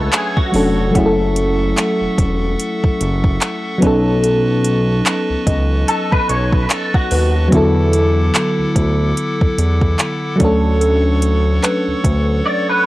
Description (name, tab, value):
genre	contemporary R&B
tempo	73 BPM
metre	4/4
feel	swing 58% on 16ths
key	unclear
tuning	A4 = 440 Hz
part	mellow FM electric piano	accompaniment	0.0-12.9 s	D3 to A4	-17 LUFS	equal	chorus
part	pipe organ, clarinet reed	sustained chords	0.0-12.9 s	E4 to D6	-26 LUFS	right 1 dB	none
part	clean electric guitar	arpeggios	0.0-0.9, 5.9-7.5, 12.5-12.9 s	F#4 to D5	-19 LUFS	equal	ensemble chorus, analog delay
part	smooth gliding synth bass	bass	0.0-12.4 s	E1 to E2	-17 LUFS	equal	none
part	soft synth bell	texture	0.0-12.9 s	F#4 to F#5	-28 LUFS	left 1 dB	chorus, analog delay
part	smooth R&B drum kit	drums	0.1-12.3 s	handclaps, hi-hat, kick drum	-17 LUFS	equal	overdrive
room	little or no reverb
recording	dry, gritty hardware recording, transformer saturation, cassette tape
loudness	-13 LUFS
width	side -17 dB against mid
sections	0.0-12.9 A section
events	silent gap 12.5-12.9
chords	0.0 Dmaj7; 0.9 F#m7; 3.8 B9; 7.5 E9sus4; 10.4 Dmaj7